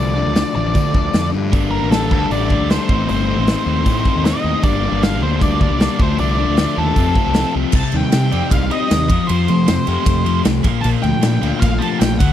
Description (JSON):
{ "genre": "indie rock", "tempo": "154 BPM", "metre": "4/4", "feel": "straight", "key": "unclear", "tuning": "A4 = 440 Hz", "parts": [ { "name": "octave-fuzz lead guitar", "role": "melody", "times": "0.0-12.3 s", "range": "A4 to A5", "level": "-22 LUFS", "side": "right 1 dB", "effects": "distortion, tape echo" }, { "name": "crunchy overdriven guitar", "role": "riff", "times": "0.0-12.3 s", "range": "F2 to D5", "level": "-20 LUFS", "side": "left 10 dB", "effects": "none" }, { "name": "fuzz fingered electric bass", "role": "bass", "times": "0.0-12.3 s", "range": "G1 to F3", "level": "-20 LUFS", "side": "right 1 dB", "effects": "overdrive" }, { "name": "big rock drum kit", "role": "drums", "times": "0.4-12.3 s", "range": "crash cymbal, hi-hat, kick drum, ride cymbal, snare drum", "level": "-18 LUFS", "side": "equal", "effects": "none" }, { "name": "high-gain distorted guitar", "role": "riff", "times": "1.5-12.3 s", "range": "F2 to Eb4", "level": "-25 LUFS", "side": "right 12 dB", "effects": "distortion, wide subtle chorus, tape echo" } ], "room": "little or no reverb", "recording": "dry, close 1970s-style studio recording, lossy compression artefacts", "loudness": "-14 LUFS", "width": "side -11 dB against mid", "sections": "0.0-7.7 A section; 7.7-12.3 B section", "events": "none", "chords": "0.0 Dm; 1.5 Gm; 2.1 Dsus4; 2.9 Adim; 4.6 Gm; 6.0 Dm; 7.0 F; 7.7 Cmadd9; 9.1 Fadd9; 10.7 Bbmaj7" }